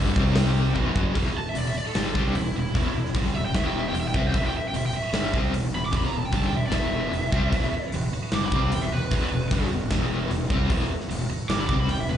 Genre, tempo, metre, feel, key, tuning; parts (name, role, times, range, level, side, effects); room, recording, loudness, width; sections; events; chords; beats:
hard rock; 151 BPM; 4/4; straight; E minor; A4 = 440 Hz
overdriven tonewheel organ; sustained chords; 0.0-1.2, 7.6-12.2 s; E3 to D5; -42 LUFS; right 1 dB
crunchy overdriven guitar; riff; 0.0-12.2 s; E2 to C4; -29 LUFS; left 6 dB; tremolo
high-gain distorted guitar; riff; 0.0-12.2 s; E2 to C4; -32 LUFS; right 9 dB; distortion
fuzz fingered electric bass; bass; 0.0-12.2 s; E1 to C2; -28 LUFS; equal; overdrive
huge arena drum kit; drums; 0.2-12.0 s; hi-hat, kick drum, snare drum; -27 LUFS; equal
lead guitar through a small cranked amp; melody; 1.4-12.2 s; D4 to D6; -30 LUFS; right 2 dB; overdrive, slapback echo, analog delay
small room ambience; live gig heard through the venue's PA, club reverb, nothing above 10.3 kHz; -22 LUFS; side -10 dB against mid
0.0-1.2 A section; 1.2-12.2 B section
drum fill 0.8-1.2; lead electric guitar solo 1.2-12.2
0.2 C5; 0.8 E5; 1.2 Em
0.36 0.76 | 1.15 1.55 1.95 2.35 | 2.74 3.14 3.54 3.94 | 4.34 4.74 5.14 5.54 | 5.93 6.33 6.73 7.13 | 7.53 7.92 8.32 8.72 | 9.12 9.51 9.91 10.30 | 10.70 11.09 11.49 11.88